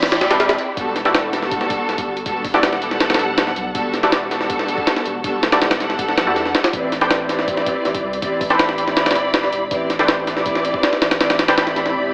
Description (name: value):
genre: drum and bass, jungle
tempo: 161 BPM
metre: 4/4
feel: straight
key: E minor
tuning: A4 = 441 Hz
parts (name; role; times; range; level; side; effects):
- dark studio string section; sustained chords; 0.0-12.1 s; G3 to B5; -20 LUFS; equal; none
- orchestra-hit-like synth stab; stabs; 0.0-12.1 s; E4 to G5; -21 LUFS; equal; built-in reverb, dub echo
- saturated sub bass; bass; 0.0-12.1 s; D1 to E2; -34 LUFS; equal; none
- jungle sampler-style drum kit; drums; 0.0-11.9 s; hi-hat, kick drum, snare drum; -19 LUFS; equal; none
- noise sweep; sound effects; 0.0-0.8 s; none; -30 LUFS; equal; none
room: moderate plate reverb, RT60 1.9 s, digital ambience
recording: AM radio sound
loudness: -15 LUFS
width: side -33 dB against mid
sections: 0.0-12.1 A section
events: none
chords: 0.0 Am11; 0.8 Em11; 6.7 Am11